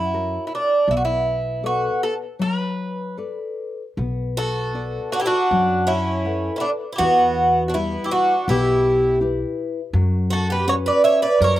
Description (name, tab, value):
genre	fado-style ballad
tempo	81 BPM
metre	4/4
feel	rubato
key	B minor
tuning	A4 = 437 Hz
part	Irish bouzouki	melody	0.0-11.6 s	D4 to E5	-19 LUFS	right 1 dB	slapback echo
part	nylon-string guitar	accompaniment	0.0-11.6 s	B2 to F#5	-27 LUFS	left 4 dB	slapback echo
part	upright bass	bass	0.0-11.6 s	B1 to F#2	-24 LUFS	equal	none
part	picked twelve-string acoustic guitar	second line	4.4-11.6 s	B3 to C#5	-26 LUFS	right 3 dB	slapback echo
room	little or no reverb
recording	recorded outdoors, with no room sound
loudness	-18 LUFS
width	side -14 dB against mid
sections	0.0-4.0 A section; 4.0-11.6 A section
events	break 2.4-4.0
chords	0.0 F#; 0.9 Bm7; 7.0 Em; 9.9 F#sus4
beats	0.14 | 0.88 1.63 2.40 3.19 | 3.98 4.75 5.51 6.26 | 7.00 7.74 8.48 9.21 | 9.94 10.67 11.41